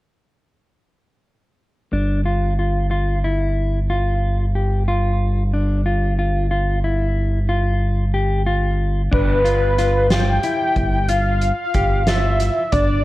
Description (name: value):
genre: progressive instrumental, band music in an uneven meter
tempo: 183 BPM (eighths)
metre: 11/8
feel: straight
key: G mixolydian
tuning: A4 = 440 Hz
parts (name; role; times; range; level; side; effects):
- mellow electric guitar; arpeggios; 1.9-13.0 s; D4 to G4; -23 LUFS; left 2 dB; tape echo
- round analog bass; bass; 1.9-13.0 s; G1; -19 LUFS; equal; none
- wide unison lead; melody; 9.1-13.0 s; B4 to G5; -20 LUFS; left 1 dB; none
- soft-mallet drum kit; drums; 9.1-12.9 s; crash cymbal, hi-hat, kick drum, snare drum; -23 LUFS; right 1 dB; none
room: light reverb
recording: worn, warbling old tape, cassette tape, warbly pitch drift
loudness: -17 LUFS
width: side -17 dB against mid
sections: 1.9-9.1 A section; 9.1-13.0 B section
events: none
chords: 1.9 G5